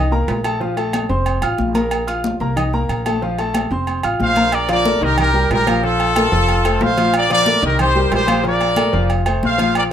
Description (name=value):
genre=latin, salsa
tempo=184 BPM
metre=4/4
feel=straight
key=Bb major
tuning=A4 = 440 Hz
part: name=clear concert grand piano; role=accompaniment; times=0.0-9.9 s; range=Eb3 to F6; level=-20 LUFS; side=left 1 dB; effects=none
part: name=upright bass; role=bass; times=0.0-9.9 s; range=F1 to C2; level=-22 LUFS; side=equal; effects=none
part: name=congas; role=percussion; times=0.1-9.9 s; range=none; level=-24 LUFS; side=left 3 dB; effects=none
part: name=timbales and agogo bells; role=percussion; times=0.3-9.9 s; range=none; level=-24 LUFS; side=right 5 dB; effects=none
part: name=bright trumpet section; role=melody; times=4.2-9.8 s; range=F4 to F5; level=-17 LUFS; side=equal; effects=none
room=moderate small room reverb, RT60 0.5 s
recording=rough home demo mix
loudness=-14 LUFS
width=side -9 dB against mid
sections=0.0-4.5 A section; 4.5-9.9 B section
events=none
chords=0.0 Cm7; 0.6 F; 1.9 Bb5; 2.6 Cm7; 3.2 F; 4.5 Bbmaj7; 5.2 Cm7; 5.8 Bb5; 6.5 F; 7.1 Bbmaj7; 7.8 Cm7; 8.4 Bbmaj7; 9.1 F